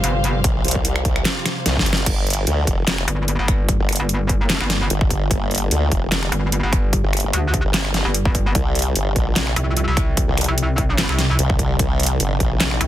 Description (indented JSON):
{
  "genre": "heavy wobble dubstep",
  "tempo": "148 BPM",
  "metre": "4/4",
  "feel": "swing 54% on 16ths, half-time",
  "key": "G minor",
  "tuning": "A4 = 440 Hz",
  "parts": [
    { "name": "lush unison pad", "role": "sustained chords", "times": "0.0-12.9 s", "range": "C3 to G4", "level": "-27 LUFS", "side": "equal", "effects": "chorus, sidechain pumping" },
    { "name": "metallic wobble bass", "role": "bass", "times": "0.0-0.4, 3.1-12.9 s", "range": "G1 to D2", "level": "-20 LUFS", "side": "equal", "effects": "chorus, overdrive" },
    { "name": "dubstep drum kit", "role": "drums", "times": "0.0-12.9 s", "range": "crash cymbal, finger snaps, handclaps, hi-hat, snare drum", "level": "-21 LUFS", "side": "equal", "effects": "overdrive" },
    { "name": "dark symphonic string section", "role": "texture", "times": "0.0-2.1 s", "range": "G4 to F5", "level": "-28 LUFS", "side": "left 1 dB", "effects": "sidechain pumping" },
    { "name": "formant-sweep wobble bass", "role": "bass", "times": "0.4-12.8 s", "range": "F1 to D2", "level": "-21 LUFS", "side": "equal", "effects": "chorus, overdrive" },
    { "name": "electronic kick drum", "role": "drums", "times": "0.4-12.5 s", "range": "none", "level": "-21 LUFS", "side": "equal", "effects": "overdrive" }
  ],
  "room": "little or no reverb",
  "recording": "dense, heavily limited modern master",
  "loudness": "-17 LUFS",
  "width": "side -13 dB against mid",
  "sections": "0.0-2.1 A section; 2.1-12.9 A section",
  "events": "drop 0.0-2.1, 2.1-12.9; drum fill 1.7-2.1",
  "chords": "0.0 Csus4; 2.1 Gm7; 8.6 Csus4",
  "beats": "0.04 | 0.44 0.85 1.25 1.66 | 2.06 2.47 2.88 3.28 | 3.69 4.09 4.50 4.90 | 5.31 5.71 6.12 6.52 | 6.93 7.33 7.74 8.14 | 8.55 8.96 9.36 9.77 | 10.17 10.58 10.98 11.39 | 11.79 12.20 12.61"
}